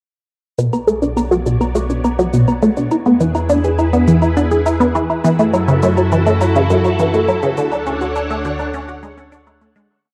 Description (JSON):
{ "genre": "ambient, sequencer-driven space music", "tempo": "103 BPM", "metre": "4/4", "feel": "straight", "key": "B dorian", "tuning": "A4 = 440 Hz", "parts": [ { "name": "string machine, full ensemble", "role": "sustained chords", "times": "0.6-9.9 s", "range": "B3 to F#5", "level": "-25 LUFS", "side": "equal", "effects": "ensemble chorus, cassette tape" }, { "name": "resonant blip pluck", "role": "riff", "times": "0.6-9.9 s", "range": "F#2 to G#4", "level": "-17 LUFS", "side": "equal", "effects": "phaser, cassette tape, tape echo" }, { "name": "warm sub bass", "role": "bass", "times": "0.6-9.9 s", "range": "B1 to F#2", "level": "-23 LUFS", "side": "equal", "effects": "none" }, { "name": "cabasa and woodblock", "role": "percussion", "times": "0.6-9.9 s", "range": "none", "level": "-31 LUFS", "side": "equal", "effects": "cassette tape, tape echo" } ], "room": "wet spring reverb, RT60 1.4 s, digital ambience", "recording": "home recording on cassette", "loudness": "-15 LUFS", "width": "mono", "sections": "0.6-9.9 A section", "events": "fade-in on string machine 0.6-9.9; filter sweep on synth arpeggio sound 0.6-9.9; fade-out 6.8-9.9", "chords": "0.6 Bmadd9; 2.9 E; 5.2 F#m7; 7.6 Dmaj7" }